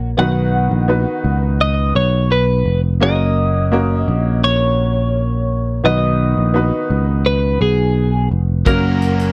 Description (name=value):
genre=piano-driven pop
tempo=85 BPM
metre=4/4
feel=straight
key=unclear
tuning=A4 = 440 Hz
part: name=bright upright piano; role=accompaniment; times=0.0-9.3 s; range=D#3 to B4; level=-24 LUFS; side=equal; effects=none
part: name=picked electric bass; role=bass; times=0.0-9.3 s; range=E#1 to C#2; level=-18 LUFS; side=equal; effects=none
part: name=twelve-string electric guitar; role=melody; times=0.2-9.3 s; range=G#4 to F#5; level=-22 LUFS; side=equal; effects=subtle chorus, slapback echo
part: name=biting overdriven guitar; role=riff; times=8.7-9.3 s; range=F#3 to F#4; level=-26 LUFS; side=equal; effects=none
part: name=natural country drum kit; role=drums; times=8.7-9.3 s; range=hi-hat, kick drum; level=-20 LUFS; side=equal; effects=none
room=little or no reverb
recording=dry, close 1970s-style studio recording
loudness=-16 LUFS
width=mono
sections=0.0-9.3 A section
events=none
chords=0.2 B; 3.0 F#; 5.8 B; 8.7 F#